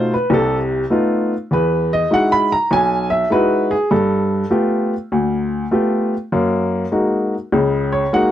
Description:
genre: solo jazz.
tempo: 100 BPM.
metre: 4/4.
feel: swing 67% on 8ths.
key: unclear.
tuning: A4 = 440 Hz.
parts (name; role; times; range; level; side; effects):
warm upright piano; solo; 0.0-8.3 s; B1 to B5; -15 LUFS; equal; none.
room: little or no reverb.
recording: dry, close 1970s-style studio recording.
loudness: -15 LUFS.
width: side -11 dB against mid.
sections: 0.0-8.3 A section.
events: upright piano solo 0.0-8.3.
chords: 0.0 F7#11; 1.5 Emaj9; 3.9 G9; 6.3 Gb69.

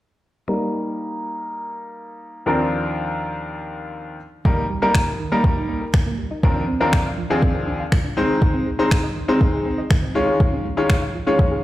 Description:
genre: dance-pop.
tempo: 121 BPM.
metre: 4/4.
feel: straight.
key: Eb major.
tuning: A4 = 440 Hz.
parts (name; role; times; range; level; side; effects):
bright grand piano; accompaniment; 0.5-11.6 s; Eb2 to Db5; -21 LUFS; left 1 dB; sidechain pumping, low-pass filter.
glassy wavetable pluck; arpeggios; 4.5-11.6 s; Eb3 to F5; -27 LUFS; right 2 dB; chorus, sidechain pumping, dub echo.
smooth R&B drum kit; drums; 4.5-11.5 s; finger snaps, kick drum; -18 LUFS; equal; overdrive.
room: light reverb.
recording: played on a big sound system in a bare room, stone room reverb.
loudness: -18 LUFS.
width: side -15 dB against mid.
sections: 0.5-4.5 A section; 4.5-11.6 B section.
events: filter sweep on grand piano 0.5-4.5; grand piano fill 11.4.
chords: 0.5 Eb; 2.5 Bbadd9/Eb; 4.2 N.C.; 4.5 Eb; 6.4 Bbadd9/Eb; 8.2 Ab/Eb; 10.2 Db/Eb.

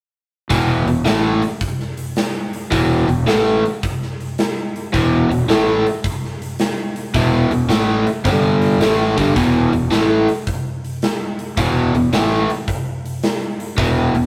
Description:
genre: blues rock power trio and southern rock.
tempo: 108 BPM.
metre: 4/4.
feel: swing 67% on 8ths.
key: E minor.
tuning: A4 = 438 Hz.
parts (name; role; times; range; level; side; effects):
overdriven electric guitar; riff; 0.5-14.3 s; E2 to A3; -18 LUFS; equal; none.
fuzz fingered electric bass; bass; 0.5-14.3 s; E1 to A1; -23 LUFS; equal; overdrive.
big rock drum kit; drums; 0.5-14.2 s; hi-hat, kick drum, snare drum; -24 LUFS; equal; none.
room: moderate stone room reverb, RT60 1.0 s.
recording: rough rehearsal-room recording.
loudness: -18 LUFS.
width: mono.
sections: 0.5-14.3 A section.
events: none.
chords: 0.5 E5; 8.3 G5; 8.8 E5.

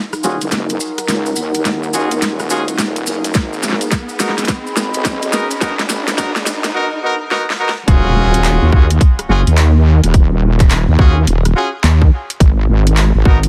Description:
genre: glitch hop.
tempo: 106 BPM.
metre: 4/4.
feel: swing 63% on 16ths.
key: Eb minor.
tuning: A4 = 440 Hz.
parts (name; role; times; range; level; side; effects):
riser and impact; sound effects; 0.9-10.1 s; none; -29 LUFS; equal; none.
warbly tape-like pad; texture; 0.0-6.7 s; Eb4 to Cb6; -26 LUFS; equal; chorus, built-in reverb, sidechain pumping.
drum and bass drum kit; drums; 0.1-13.5 s; handclaps, hi-hat, rim click, snare drum; -22 LUFS; equal; overdrive.
maracas; percussion; 0.1-6.7 s; none; -28 LUFS; equal; none.
brilliant horn section; stabs; 0.2-13.4 s; Cb4 to Bb4; -23 LUFS; equal; sidechain pumping, low-pass filter, dub echo.
wobble bass; bass; 0.2-13.5 s; Eb1 to Eb2; -16 LUFS; equal; chorus, high-pass filter.
electronic kick drum; drums; 3.3-13.4 s; none; -13 LUFS; equal; overdrive.
room: little or no reverb.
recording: dense, heavily limited modern master, vinyl crackle, high-pass filter.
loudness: -14 LUFS.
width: mono.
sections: 0.0-7.9 A section; 7.9-13.5 B section.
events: build-up 0.0-7.9; drum fill 0.0-6.7, 7.3-7.9; filter sweep on horn section 0.0-7.9; riser 0.9-6.7; drop 7.9-13.5; impact 7.9-10.1.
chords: 0.0 Ebm11; 3.3 Abm7; 7.9 Ebm11; 12.4 N.C..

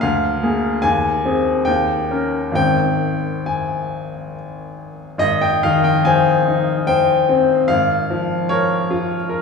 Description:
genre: classical, romantic nocturne for solo piano.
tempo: 64-76 BPM.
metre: 3/4.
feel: rubato.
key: Ab major.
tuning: A4 = 440 Hz.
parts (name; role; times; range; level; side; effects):
clear baby grand piano; solo; 0.0-9.4 s; Ab1 to Ab5; -16 LUFS; left 2 dB; none.
room: wet concert hall reverb, RT60 1.8 s.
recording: heard from further back in the room, small room ambience.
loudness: -15 LUFS.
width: side -5 dB against mid.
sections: 0.0-5.2 A section; 5.2-9.4 A section.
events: none.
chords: 0.0 Bb7/D; 0.8 Ab/Eb; 1.7 Eb7; 2.6 Ab; 7.7 Bbm7/Ab.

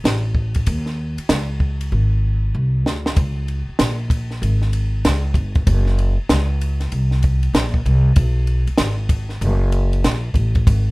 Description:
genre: hip hop, jazz-hop.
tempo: 96 BPM.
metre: 4/4.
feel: swing 63% on 16ths.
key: unclear.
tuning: A4 = 440 Hz.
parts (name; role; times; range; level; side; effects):
upright bass; bass; 0.0-10.9 s; Gb1 to Eb2; -18 LUFS; equal; none.
compact cocktail drum kit; drums; 0.1-10.9 s; hi-hat, kick drum, ride cymbal, snare drum; -19 LUFS; equal; none.
room: little or no reverb.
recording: rough home demo mix.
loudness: -16 LUFS.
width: side -24 dB against mid.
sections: 0.0-3.2 A section; 3.2-10.9 B section.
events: drum fill 1.9-3.2.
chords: none.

